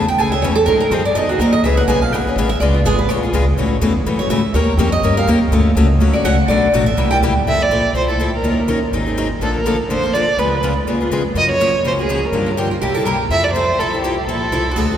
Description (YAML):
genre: acoustic string swing (jazz manouche)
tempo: 247 BPM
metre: 4/4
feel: swing 57% on 8ths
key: unclear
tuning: A4 = 440 Hz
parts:
  - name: picked steel-string acoustic guitar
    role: second line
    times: 0.0-7.2, 12.5-15.0 s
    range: E4 to G#5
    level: -20 LUFS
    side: right 2 dB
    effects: none
  - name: picked steel-string acoustic guitar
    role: accompaniment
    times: 0.0-15.0 s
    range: B2 to A#4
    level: -19 LUFS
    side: left 3 dB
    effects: none
  - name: upright bass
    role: bass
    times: 0.0-15.0 s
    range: F1 to G#2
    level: -18 LUFS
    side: equal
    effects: none
  - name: warm violin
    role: melody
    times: 7.5-15.0 s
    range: G4 to E5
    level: -18 LUFS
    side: right 2 dB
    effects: none
room: wet cathedral reverb, RT60 5.3 s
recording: recorded in a church or concert hall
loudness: -14 LUFS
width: side -10 dB against mid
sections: 0.0-7.5 A section; 7.5-15.0 B section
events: steel-string acoustic guitar solo 0.0-7.5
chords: 0.0 Amaj7; 0.7 G#7b13; 1.6 C#m7; 2.6 C#7; 3.6 F#m9; 4.5 D#9; 5.5 Dmaj7; 6.5 Bm7; 7.0 C7; 7.5 Fmaj7; 8.4 Ebm7; 8.9 Ab7; 9.4 Bbmaj7; 10.4 Db7; 11.4 Gbmaj9; 12.3 Gm7; 12.8 C7; 13.3 Fmaj7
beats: 0.18 0.42 | 0.67 0.91 1.15 1.39 | 1.64 1.88 2.12 2.36 | 2.60 2.85 3.09 3.33 | 3.57 3.82 4.06 4.30 | 4.54 4.79 5.03 5.27 | 5.51 5.76 6.00 6.24 | 6.49 6.73 6.97 7.21 | 7.46 7.70 7.94 8.19 | 8.43 8.68 8.92 9.16 | 9.41 9.65 9.89 10.14 | 10.38 10.62 10.87 11.11 | 11.35 11.60 11.84 12.08 | 12.33 12.57 12.81 13.06 | 13.30 13.54 13.79 14.03 | 14.27 14.52 14.76